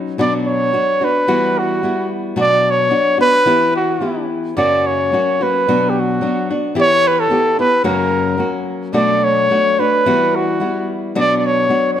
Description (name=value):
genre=mexican folk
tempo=110 BPM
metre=2/4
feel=straight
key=B minor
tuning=A4 = 442 Hz
part: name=nylon-string guitar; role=accompaniment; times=0.0-12.0 s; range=F#2 to G4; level=-18 LUFS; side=left 2 dB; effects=none
part: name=warm trumpet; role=melody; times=0.2-12.0 s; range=F#4 to D5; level=-15 LUFS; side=right 1 dB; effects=none
room=light reverb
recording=none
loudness=-13 LUFS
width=side -10 dB against mid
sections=0.2-12.0 A section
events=none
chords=0.2 Bm; 1.3 Emadd9; 2.4 Bm; 3.5 Em; 4.6 F#; 5.7 Bm; 6.8 Em; 7.9 F#; 9.0 Bm7; 10.1 Emadd9; 11.2 Bm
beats=| 0.18 0.74 | 1.29 1.83 | 2.38 2.93 | 3.47 4.02 | 4.57 5.13 | 5.68 6.23 | 6.77 7.32 | 7.86 8.41 | 8.97 9.52 | 10.07 10.62 | 11.16 11.71